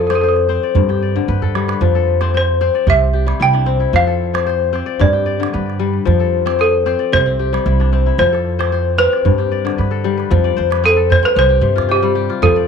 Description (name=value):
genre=west african traditional, West African string and xylophone music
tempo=113 BPM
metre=4/4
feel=straight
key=F lydian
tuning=A4 = 439 Hz
part: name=balafon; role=melody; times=0.0-12.7 s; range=G4 to G5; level=-16 LUFS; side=right 4 dB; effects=none
part: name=kora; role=arpeggios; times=0.0-12.7 s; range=G2 to D5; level=-17 LUFS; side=left 11 dB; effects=tape echo
part: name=upright bass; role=bass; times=0.0-12.6 s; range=C2 to G2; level=-18 LUFS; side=right 2 dB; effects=none
part: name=calabash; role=percussion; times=0.1-12.6 s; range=none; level=-20 LUFS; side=right 6 dB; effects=none
room=light reverb, small room ambience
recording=1960s-style stereo with parts hard left and right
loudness=-13 LUFS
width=side -6 dB against mid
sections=0.0-10.3 A section; 10.3-12.7 B section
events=drum fill 1.2-1.8; balafon solo 10.3-12.7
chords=0.0 F; 0.8 G; 1.8 F; 2.9 C; 3.9 F; 5.0 G; 6.1 F; 7.1 C; 8.2 F; 9.3 G; 10.3 F; 11.4 C5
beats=0.23 0.76 1.29 | 1.82 2.35 2.88 3.41 | 3.94 4.47 5.00 5.54 | 6.07 6.60 7.13 7.66 | 8.19 8.72 9.25 9.78 | 10.31 10.84 11.37 11.90 | 12.43